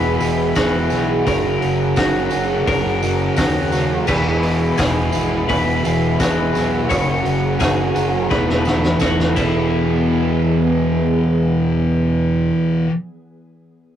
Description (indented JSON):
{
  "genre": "rock, shoegaze and dream pop",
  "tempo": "85 BPM",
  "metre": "4/4",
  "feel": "straight",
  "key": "E lydian",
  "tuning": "A4 = 440 Hz",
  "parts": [
    { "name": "glassy FM pad", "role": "sustained chords", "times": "0.0-12.5 s", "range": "E3 to B5", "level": "-23 LUFS", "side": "equal", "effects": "ensemble chorus, built-in reverb" },
    { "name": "twelve-string electric guitar", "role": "arpeggios", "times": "0.0-10.6 s", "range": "E4 to C#5", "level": "-25 LUFS", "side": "left 4 dB", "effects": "none" },
    { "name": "overdriven semi-hollow guitar", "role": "riff", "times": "0.0-12.9 s", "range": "E2 to G#4", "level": "-22 LUFS", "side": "right 4 dB", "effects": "none" },
    { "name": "thick fuzz guitar", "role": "riff", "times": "0.0-12.9 s", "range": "E2 to F#3", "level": "-20 LUFS", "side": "left 2 dB", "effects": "distortion" },
    { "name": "fuzz fingered electric bass", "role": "bass", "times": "0.0-12.5 s", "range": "E1 to D#2", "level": "-25 LUFS", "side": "equal", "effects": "overdrive" },
    { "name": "loose indie drum kit", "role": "drums", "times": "0.2-9.5 s", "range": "crash cymbal, hi-hat, kick drum, snare drum", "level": "-22 LUFS", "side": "equal", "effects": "none" },
    { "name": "tambourine", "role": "percussion", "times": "0.2-10.0 s", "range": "none", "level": "-36 LUFS", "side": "right 6 dB", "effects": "none" }
  ],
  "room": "wet booth ambience, RT60 0.2 s",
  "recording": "rough rehearsal-room recording, warm saturation",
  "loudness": "-15 LUFS",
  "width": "side -10 dB against mid",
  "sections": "0.0-9.7 A section; 9.7-12.5 B section",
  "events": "drum fill 8.3-9.7",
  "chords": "0.0 E; 1.3 F#add9; 4.1 E; 6.9 F#add9; 8.3 Esus4; 9.4 E",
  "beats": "0.57 | 1.27 1.98 2.68 3.39 | 4.09 4.79 5.50 6.20 | 6.91 7.61 8.32 9.02 | 9.73 10.43 11.13 11.84"
}